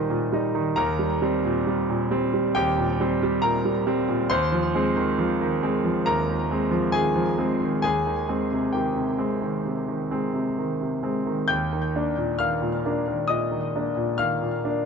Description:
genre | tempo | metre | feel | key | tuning
neoclassical minimalist piano | 67 BPM | 4/4 | rubato | Eb major | A4 = 440 Hz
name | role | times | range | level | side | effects
clear concert grand piano | solo | 0.0-14.9 s | Eb2 to G6 | -22 LUFS | equal | tape echo
room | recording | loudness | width
light reverb | dark, warm production, nothing above 7.8 kHz | -22 LUFS | side -5 dB against mid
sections
0.0-14.9 A section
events
none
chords
0.0 Ebmaj7; 0.8 Cm7/Eb; 4.3 Fm7/Eb; 7.8 Abmaj7/Eb; 11.5 Ebmaj7

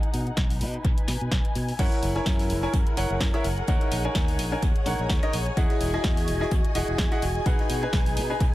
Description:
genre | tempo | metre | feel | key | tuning
piano house | 127 BPM | 4/4 | swing 55% on 16ths | unclear | A4 = 440 Hz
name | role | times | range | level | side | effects
punchy analog drum machine | drums | 0.0-8.5 s | crash cymbal, hi-hat, snare drum | -33 LUFS | equal | dub echo
muted studio string section | texture | 0.0-8.5 s | D#4 to G#5 | -35 LUFS | left 2 dB | sidechain pumping
fingered electric bass | bass | 0.1-8.5 s | E1 to B2 | -29 LUFS | equal | sidechain pumping
electronic kick drum | drums | 0.4-8.5 s | none | -25 LUFS | equal | none
string machine, violins | sustained chords | 1.8-8.5 s | G#4 to G#5 | -36 LUFS | equal | ensemble chorus, sidechain pumping
bright upright piano | riff | 1.8-8.4 s | D#4 to G#5 | -29 LUFS | equal | sidechain pumping, dub echo
unplugged drum kit | drums | 1.8-8.5 s | hi-hat, snare drum | -46 LUFS | right 4 dB | none
room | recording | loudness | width
small room ambience | echo-heavy mix, faint mains hum | -22 LUFS | side -16 dB against mid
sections
0.0-8.5 A section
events
none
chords
0.0 B6; 1.8 F#7; 3.7 D#m7; 5.6 Emaj9; 7.5 B6

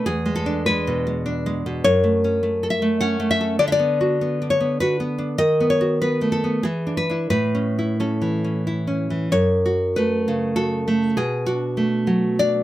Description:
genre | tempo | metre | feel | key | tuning
romantic piece for solo classical guitar | 87-103 BPM | 3/4 | rubato | A major, F# minor from 9.3 s | A4 = 440 Hz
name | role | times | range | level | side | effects
nylon-string guitar | solo | 0.0-12.6 s | E2 to F#5 | -18 LUFS | equal | none
room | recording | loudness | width
light reverb | none | -19 LUFS | side -14 dB against mid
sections
0.0-9.3 A section; 9.3-12.6 B section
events
none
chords
0.1 E7; 1.8 F#m; 3.6 Bm/D; 5.4 B7/D#; 6.6 E7; 7.3 A; 9.3 F#m; 11.2 Bm7

